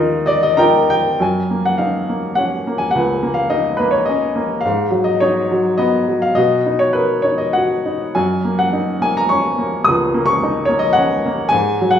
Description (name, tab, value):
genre	classical, lyrical solo piano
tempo	94-111 BPM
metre	3/4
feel	rubato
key	F# major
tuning	A4 = 440 Hz
part	warm upright piano	solo	0.0-12.0 s	C#2 to D#6	-14 LUFS	left 1 dB	none
room	wet recital hall reverb, RT60 1.6 s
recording	studio reverb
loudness	-14 LUFS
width	side -9 dB against mid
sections	0.0-1.2 A section; 1.2-12.0 B section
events	upright piano fill 0.0-1.2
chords	0.0 Ebsus2; 1.2 F#6; 4.6 G#m7; 6.4 Bmaj7; 8.2 F#6